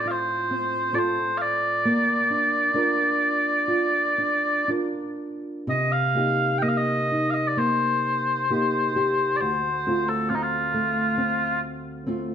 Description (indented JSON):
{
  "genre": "celtic folk, Celtic slow air",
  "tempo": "59-69 BPM",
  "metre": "4/4",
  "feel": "rubato",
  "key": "C dorian",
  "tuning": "A4 = 442 Hz",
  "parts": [
    { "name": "mellow small bagpipes", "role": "melody", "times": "0.0-11.6 s", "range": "Eb4 to G5", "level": "-23 LUFS", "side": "equal", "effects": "none" },
    { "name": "nylon-string guitar", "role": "accompaniment", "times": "0.0-12.3 s", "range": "D2 to Bb4", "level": "-26 LUFS", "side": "equal", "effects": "none" }
  ],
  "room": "moderate recital hall reverb, RT60 1.7 s",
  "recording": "none",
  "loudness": "-21 LUFS",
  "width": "side -8 dB against mid",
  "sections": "0.0-5.7 A section; 5.7-12.3 B section",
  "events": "none",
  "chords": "0.0 F/A; 1.8 Bb; 5.7 Cm7; 9.4 Dm7",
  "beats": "0.06 0.95 | 1.84 2.75 3.69 4.68 | 5.66 6.62 7.57 8.50 | 9.40 10.29 11.16 12.04"
}